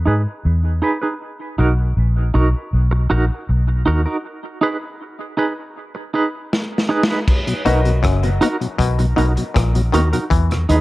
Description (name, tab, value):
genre	dub reggae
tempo	79 BPM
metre	4/4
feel	straight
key	B major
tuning	A4 = 440 Hz
part	vintage muted fingered electric bass	bass	0.0-10.8 s	F#1 to G#2	-16 LUFS	equal	none
part	semi-hollow electric guitar	accompaniment	0.1-10.8 s	D#4 to B4	-21 LUFS	right 3 dB	tremolo, low-pass filter, dub echo
part	crunchy breakbeat drum kit	drums	6.5-10.8 s	crash cymbal, hi-hat, kick drum, rim click, snare drum	-20 LUFS	equal	none
part	mellow tonewheel organ	accompaniment	7.5-10.8 s	E2 to D#4	-24 LUFS	left 2 dB	chorus vibrato, slow rotary speaker, dub echo
part	muted clav	riff	7.7-10.5 s	F#2 to E3	-25 LUFS	left 7 dB	dub echo
part	warm upright piano	stabs	7.7-7.9 s	F#4 to D#5	-26 LUFS	left 2 dB	dub echo
room	light reverb, small room ambience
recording	dark, warm production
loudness	-16 LUFS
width	side -18 dB against mid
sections	0.0-7.3 A section; 7.3-10.8 B section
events	break 4.2-7.3; drum fill 6.5-7.3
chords	0.0 Emaj7; 1.2 Bmaj7; 4.2 G#m/D#; 7.3 Bmaj7; 10.3 Emaj7